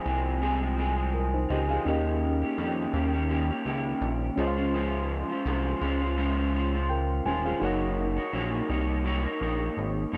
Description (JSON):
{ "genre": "indie pop, bedroom pop", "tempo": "84 BPM", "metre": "4/4", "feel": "swing 55% on 16ths", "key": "unclear", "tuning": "A4 = 439 Hz", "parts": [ { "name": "electric guitar through a small old amp", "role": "accompaniment", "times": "0.0-10.2 s", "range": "F2 to Db5", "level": "-32 LUFS", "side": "equal", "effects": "analog chorus, warbly pitch drift" }, { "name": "reed electric piano", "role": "accompaniment", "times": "0.0-10.2 s", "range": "Db4 to Ab5", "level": "-36 LUFS", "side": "equal", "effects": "fast tremolo, cassette tape" }, { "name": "chorused synth bass", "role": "bass", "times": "0.1-10.2 s", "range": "Eb1 to F2", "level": "-31 LUFS", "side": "equal", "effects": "none" } ], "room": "light reverb", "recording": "none", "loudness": "-28 LUFS", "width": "mono", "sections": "0.0-10.2 A section", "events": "none", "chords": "0.0 Fm; 1.9 Eb7; 4.4 Dbmaj7; 7.6 Gb6", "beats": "0.43 1.15 | 1.86 2.58 3.30 4.02 | 4.74 5.46 6.18 6.90 | 7.61 8.33 9.05 9.77" }